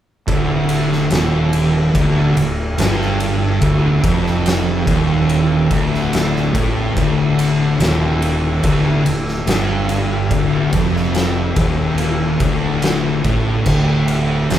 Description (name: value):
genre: stoner and doom metal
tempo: 72 BPM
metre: 4/4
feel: straight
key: D minor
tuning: A4 = 440 Hz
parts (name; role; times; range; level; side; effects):
- tonewheel organ; sustained chords; 0.3-14.6 s; D3 to A4; -30 LUFS; right 1 dB; stopped rotary speaker
- thick fuzz guitar; riff; 0.3-14.6 s; D2 to A2; -19 LUFS; left 2 dB; distortion
- thick fuzz guitar; riff; 0.3-14.6 s; D2 to A2; -20 LUFS; right 3 dB; distortion
- fuzz fingered electric bass; bass; 0.3-14.6 s; D1 to A1; -23 LUFS; equal; overdrive
- oversized low-tuned drum kit; drums; 0.3-14.6 s; crash cymbal, kick drum, ride cymbal, snare drum; -20 LUFS; equal; none
room: wet large studio reverb, RT60 1.2 s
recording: band playing live in one room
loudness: -14 LUFS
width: side -11 dB against mid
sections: 0.3-14.6 A section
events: none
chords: 0.3 Dm